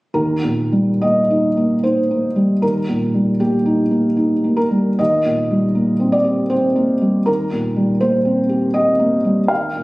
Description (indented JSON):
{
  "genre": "neoclassical minimalist piano",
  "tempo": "67-82 BPM",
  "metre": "3/4",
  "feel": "rubato",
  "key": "Eb major",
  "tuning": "A4 = 440 Hz",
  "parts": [
    { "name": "felt-muted upright piano", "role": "solo", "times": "0.1-9.8 s", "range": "Eb2 to F5", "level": "-14 LUFS", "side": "equal", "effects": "none" }
  ],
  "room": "light reverb",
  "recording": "recorded on a phone in the room, studio reverb, nothing above 10.7 kHz",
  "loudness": "-14 LUFS",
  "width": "side -21 dB against mid",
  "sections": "0.1-9.8 A section",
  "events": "none",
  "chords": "0.1 Eb; 5.0 Cm7/Eb"
}